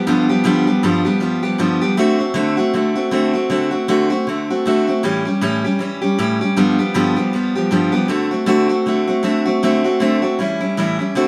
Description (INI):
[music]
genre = rock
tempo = 157 BPM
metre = 4/4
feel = swing 58% on 8ths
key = D mixolydian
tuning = A4 = 440 Hz
[part]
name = picked steel-string acoustic guitar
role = solo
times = 0.0-11.3 s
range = G2 to G4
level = -17 LUFS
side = equal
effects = none
[sound]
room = moderate large studio reverb, RT60 1.0 s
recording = band playing live in one room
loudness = -17 LUFS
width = mono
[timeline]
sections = 0.0-11.2 A section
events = none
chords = 0.0 G7; 2.0 D7; 5.0 A7; 6.6 G7; 8.1 D7; 10.4 A7